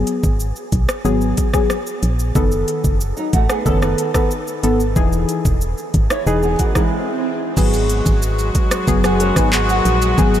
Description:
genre	dancehall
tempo	92 BPM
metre	4/4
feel	straight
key	G# minor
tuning	A4 = 440 Hz
part	deep mellow chord stab	accompaniment	0.0-10.4 s	D#3 to A4	-20 LUFS	left 2 dB	chorus, sidechain pumping
part	organ-like FM bass	bass	0.0-10.4 s	E1 to B1	-19 LUFS	equal	none
part	afro-pop drum kit	drums	0.1-10.4 s	crash cymbal, handclaps, hi-hat, kick drum, rim click, shaker	-20 LUFS	equal	overdrive
part	swell	sound effects	6.4-7.6 s	none	-31 LUFS	right 4 dB	none
part	flamenco guitar	arpeggios	3.2-10.2 s	F#3 to C#5	-24 LUFS	right 3 dB	lush chorus, analog delay
part	warm studio string section	sustained chords	7.6-10.4 s	F#3 to F#4	-20 LUFS	left 1 dB	sidechain pumping
part	maracas	percussion	7.6-10.4 s	none	-32 LUFS	right 6 dB	none
room	moderate huge ambient reverb, RT60 8.2 s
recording	dreamy mix soaked in reverb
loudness	-15 LUFS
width	side -11 dB against mid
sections	0.0-7.6 A section; 7.6-10.4 B section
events	swell 6.4-7.6; break 6.9-7.6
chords	0.0 G#m7; 2.4 B7/F#; 5.0 Emaj7; 7.6 G#m7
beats	0.40 1.05 1.70 | 2.35 3.01 3.66 4.31 | 4.96 5.61 6.27 6.92 | 7.57 8.22 8.88 9.53 | 10.18

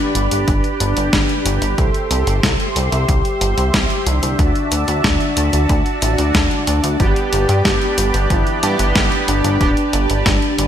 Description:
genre	synthwave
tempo	92 BPM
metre	4/4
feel	straight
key	G major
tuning	A4 = 440 Hz
part	soft octave-layered synth lead	melody	0.0-10.7 s	D4 to A4	-22 LUFS	left 1 dB	chorus, cassette tape, ping-pong delay
part	soft supersaw	sustained chords	0.0-10.7 s	F#4 to C6	-22 LUFS	right 2 dB	lush chorus, sidechain pumping
part	chorused synth bass	bass	0.2-10.7 s	D1 to G2	-18 LUFS	equal	sidechain pumping
part	clean 12-bit digital drum machine	drums	0.2-10.7 s	hi-hat, snare drum	-20 LUFS	equal	none
part	electronic kick drum	drums	0.5-10.4 s	none	-19 LUFS	equal	none
part	analog synth brass	stabs	7.0-9.7 s	B3 to G4	-23 LUFS	right 4 dB	chorus, digital delay
room	moderate lush hall reverb, RT60 1.7 s, digital ambience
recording	bright 1980s-style digital production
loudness	-14 LUFS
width	side -10 dB against mid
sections	0.0-10.7 A section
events	none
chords	0.0 G; 1.8 C; 4.4 Dadd9; 7.0 G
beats	0.48 1.13 | 1.78 2.43 3.09 3.74 | 4.39 5.04 5.69 6.35 | 7.00 7.65 8.30 8.96 | 9.61 10.26

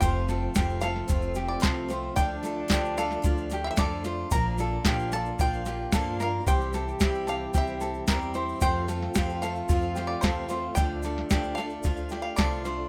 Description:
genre	indie folk with a building arrangement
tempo	112 BPM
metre	4/4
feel	straight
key	F major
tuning	A4 = 439 Hz
part	bluegrass banjo	melody	0.0-12.7 s	C5 to Bb5	-36 LUFS	equal	tape echo
part	warm French horn	second line	0.0-12.7 s	C4 to G4	-39 LUFS	equal	tape echo
part	fingerpicked steel-string acoustic guitar	accompaniment	0.0-1.9 s	F4	-50 LUFS	equal	none
part	picked swing-style acoustic guitar	accompaniment	0.0-12.9 s	F2 to G4	-38 LUFS	equal	none
part	mellow tonewheel organ	sustained chords	0.0-12.9 s	E3 to F4	-40 LUFS	equal	slow rotary speaker, chorus vibrato
part	tenor ukulele	arpeggios	0.0-12.9 s	F4 to D5	-36 LUFS	equal	none
part	upright bass	bass	0.0-12.8 s	F1 to G2	-36 LUFS	equal	none
part	soft vintage rhythm box	drums	0.0-12.7 s	kick drum, snare drum	-29 LUFS	equal	none
part	tube shaker	percussion	0.0-12.8 s	none	-46 LUFS	equal	none
room	little or no reverb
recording	rough home demo mix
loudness	-28 LUFS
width	mono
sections	0.0-12.9 A section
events	none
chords	0.0 F; 2.2 Dm; 4.3 Bb; 6.5 C; 8.6 F; 10.8 Dm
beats	| 0.02 0.56 1.09 1.63 | 2.17 2.70 3.24 3.78 | 4.31 4.85 5.39 5.92 | 6.46 7.00 7.54 8.07 | 8.61 9.15 9.69 10.23 | 10.77 11.30 11.84 12.38

